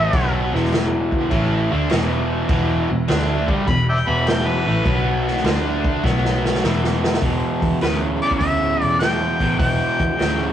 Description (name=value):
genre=blues rock power trio and southern rock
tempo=102 BPM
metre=4/4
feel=swing 68% on 8ths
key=E minor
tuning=A4 = 440 Hz
part: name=mellow harmonica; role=melody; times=0.0-10.5 s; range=B4 to B5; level=-21 LUFS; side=left 1 dB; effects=overdrive
part: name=cranked stack guitar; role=riff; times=0.0-10.5 s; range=E2 to D4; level=-21 LUFS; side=equal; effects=overdrive
part: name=vintage muted fingered electric bass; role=bass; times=0.0-10.5 s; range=E1 to E2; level=-23 LUFS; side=equal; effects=none
part: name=vintage drum kit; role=drums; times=0.1-10.4 s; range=crash cymbal, hi-hat, kick drum, snare drum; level=-23 LUFS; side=equal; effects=none
room=moderate stone room reverb, RT60 1.0 s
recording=rough rehearsal-room recording, cassette tape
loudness=-17 LUFS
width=side -10 dB against mid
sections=0.0-7.2 A section; 7.2-10.5 B section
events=harmonica solo 0.0-7.2; drum fill 6.0-7.2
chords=0.0 E5; 4.9 B5; 5.5 D5; 6.0 B5; 6.6 E5; 7.2 Em